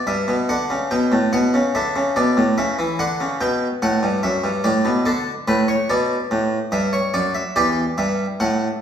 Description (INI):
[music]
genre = classical, baroque-style 3-part fugue for harpsichord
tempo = 72 BPM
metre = 3/4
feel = straight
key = unclear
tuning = A4 = 441 Hz
[part]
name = harpsichord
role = solo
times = 0.0-8.8 s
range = E2 to G5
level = -18 LUFS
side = equal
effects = none
[sound]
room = wet stone room reverb, RT60 1.3 s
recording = heard from further back in the room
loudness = -17 LUFS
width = side -8 dB against mid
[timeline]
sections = 0.0-8.8 A section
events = none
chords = 0.1 Em/G; 1.8 D5; 2.6 C#dim; 4.2 F#m7; 5.1 Bm; 6.7 Em7/G; 7.6 Em